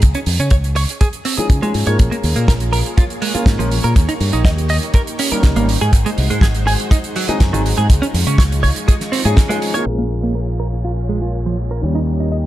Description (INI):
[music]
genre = nu-disco, nu disco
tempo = 122 BPM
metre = 4/4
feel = straight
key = Bb minor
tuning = A4 = 442 Hz
[part]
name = fingered electric bass with an envelope filter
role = bass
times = 0.0-12.5 s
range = Ab1 to Db3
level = -18 LUFS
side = equal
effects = none
[part]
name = damped 70s drum kit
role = drums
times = 0.0-9.8 s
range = hi-hat, snare drum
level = -24 LUFS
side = right 3 dB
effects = low-pass filter on hats, studio reverb, low-pass filter on snare, low-pass filter on room, dub echo
[part]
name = kick drum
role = drums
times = 0.0-9.5 s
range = none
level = -12 LUFS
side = equal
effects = studio reverb
[part]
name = direct-recorded clean electric guitar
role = riff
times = 0.1-12.4 s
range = Eb3 to Eb5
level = -22 LUFS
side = right 3 dB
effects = analog chorus, vintage 12-bit sampler grit, low-pass filter, dub echo
[part]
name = dark baby grand piano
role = accompaniment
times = 1.4-12.5 s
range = Eb3 to Bb4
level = -24 LUFS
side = left 2 dB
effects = dub echo
[part]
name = string machine, full ensemble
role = sustained chords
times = 2.0-12.5 s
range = Ab3 to Db6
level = -27 LUFS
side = equal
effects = ensemble chorus, sidechain pumping
[part]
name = downlifter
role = sound effects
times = 10.1-12.5 s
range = none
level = -43 LUFS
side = equal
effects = none
[sound]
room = light reverb, small room ambience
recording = echo-heavy mix, low-pass filter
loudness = -14 LUFS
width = side -14 dB against mid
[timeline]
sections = 0.0-9.9 A section; 9.9-12.5 B section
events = none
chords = 0.0 Dbadd9; 2.0 Bbm7; 4.0 Eb7; 5.7 Ab7; 7.9 Dbadd9; 9.9 Bbm7; 11.8 Eb7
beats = | 0.03 0.52 1.01 1.50 | 1.99 2.49 2.98 3.47 | 3.96 4.45 4.95 5.44 | 5.93 6.42 6.91 7.40 | 7.90 8.39 8.88 9.37 | 9.86 10.36 10.85 11.34 | 11.83 12.32